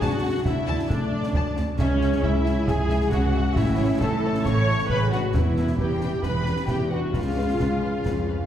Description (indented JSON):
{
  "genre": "cinematic, heroic adventure film score",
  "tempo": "135 BPM",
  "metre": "4/4",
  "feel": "straight",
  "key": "unclear",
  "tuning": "A4 = 440 Hz",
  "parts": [
    { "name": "warm symphonic violin section", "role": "melody", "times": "0.0-8.4 s", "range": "B4 to A5", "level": "-38 LUFS", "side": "left 4 dB", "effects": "none" },
    { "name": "warm symphonic violin section", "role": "second line", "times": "0.0-8.5 s", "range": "C#5 to C#6", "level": "-33 LUFS", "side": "left 2 dB", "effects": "none" },
    { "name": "rich symphonic viola section", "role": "accompaniment", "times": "0.0-8.5 s", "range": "C#4 to C#5", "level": "-28 LUFS", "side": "right 1 dB", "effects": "none" },
    { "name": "mellow French horn section", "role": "sustained chords", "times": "0.0-8.5 s", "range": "G#3 to A4", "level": "-31 LUFS", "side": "left 3 dB", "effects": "none" },
    { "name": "concert harp", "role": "arpeggios", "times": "0.0-8.5 s", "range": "A2 to E5", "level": "-35 LUFS", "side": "left 7 dB", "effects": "none" },
    { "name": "rich symphonic cello section", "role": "bass", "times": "0.0-8.5 s", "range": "C#2 to A2", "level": "-29 LUFS", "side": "right 1 dB", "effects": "none" },
    { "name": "rich symphonic double bass section", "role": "bass", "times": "0.0-8.4 s", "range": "E1 to D2", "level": "-27 LUFS", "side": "right 2 dB", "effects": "none" },
    { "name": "concert snare drum, concert bass drum and clash cymbals", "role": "drums", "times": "0.0-8.2 s", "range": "none", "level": "-28 LUFS", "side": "equal", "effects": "none" },
    { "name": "timpani", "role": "percussion", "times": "3.6-6.0 s", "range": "E2 to A2", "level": "-29 LUFS", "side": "equal", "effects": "none" }
  ],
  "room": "wet scoring stage reverb, RT60 1.6 s",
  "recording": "heard from further back in the room",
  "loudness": "-21 LUFS",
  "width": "side -10 dB against mid",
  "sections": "0.0-8.5 A section",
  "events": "none",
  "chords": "0.0 D; 1.8 C#m; 3.6 A; 5.3 Em; 7.1 C#7"
}